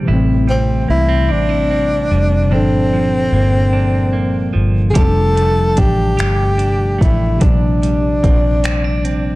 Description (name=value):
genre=slow six-eight R&B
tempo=49 BPM (dotted quarters)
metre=6/8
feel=straight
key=G dorian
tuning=A4 = 441 Hz
part: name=clean electric guitar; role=second line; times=0.0-9.4 s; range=G2 to G4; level=-24 LUFS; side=right 6 dB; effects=none
part: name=tine electric piano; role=accompaniment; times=0.0-9.4 s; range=Bb2 to A4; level=-20 LUFS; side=left 1 dB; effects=overdrive
part: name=vintage muted fingered electric bass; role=bass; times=0.0-9.4 s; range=F1 to C2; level=-16 LUFS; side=equal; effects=none
part: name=breathy tenor saxophone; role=melody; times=0.5-9.4 s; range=C4 to A4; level=-18 LUFS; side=left 1 dB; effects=none
part: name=smooth R&B drum kit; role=drums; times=5.0-9.2 s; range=finger snaps, hi-hat, kick drum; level=-16 LUFS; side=equal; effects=vintage 12-bit sampler grit
room=digital ambience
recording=dark, warm production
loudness=-12 LUFS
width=side -19 dB against mid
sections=0.0-9.4 A section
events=none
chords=0.1 Am7; 2.5 Gm7; 5.0 F69; 7.4 Bb69